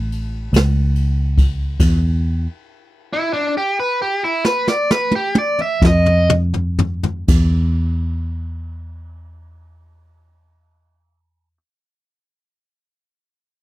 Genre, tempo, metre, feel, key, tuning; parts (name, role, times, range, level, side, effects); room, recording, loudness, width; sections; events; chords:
slow blues; 40-48 BPM (dotted quarters); 12/8; straight; A4 = 440 Hz
vintage muted fingered electric bass; bass; 0.0-11.6 s; A1 to E#2; -17 LUFS; equal
jazz brush drum kit; drums; 0.1-7.5 s; crash cymbal, kick drum, ride cymbal, snare drum, toms; -17 LUFS; equal
biting overdriven guitar; melody; 3.1-6.3 s; D4 to E5; -17 LUFS; equal
little or no reverb; dry, close 1970s-style studio recording; -15 LUFS; side -16 dB against mid
0.0-7.3 A section; 7.3-13.4 B section
overdriven electric guitar solo 0.0-7.3; slowing down 0.1-7.3; drum fill 4.4-7.3
0.0 A; 1.8 N.C.; 5.8 D#sus2/E#; 7.3 N.C.